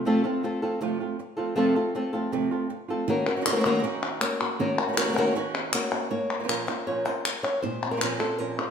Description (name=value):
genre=flamenco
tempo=158 BPM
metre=4/4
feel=straight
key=F phrygian dominant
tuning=A4 = 441 Hz
part: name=flamenco guitar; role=melody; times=0.0-8.7 s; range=Bb2 to Eb5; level=-26 LUFS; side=left 1 dB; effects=none
part: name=flamenco guitar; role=stabs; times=0.0-8.7 s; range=F2 to C5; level=-30 LUFS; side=right 5 dB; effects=none
part: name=palmas hand claps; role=percussion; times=3.3-8.7 s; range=none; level=-29 LUFS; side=left 3 dB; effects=none
room=wet stone room reverb, RT60 1.3 s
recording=minimal, uncompressed stereo recording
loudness=-24 LUFS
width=side -7 dB against mid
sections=0.1-6.1 A section; 6.1-8.7 B section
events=none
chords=0.1 F; 3.1 Ebm7; 6.1 Bbmadd9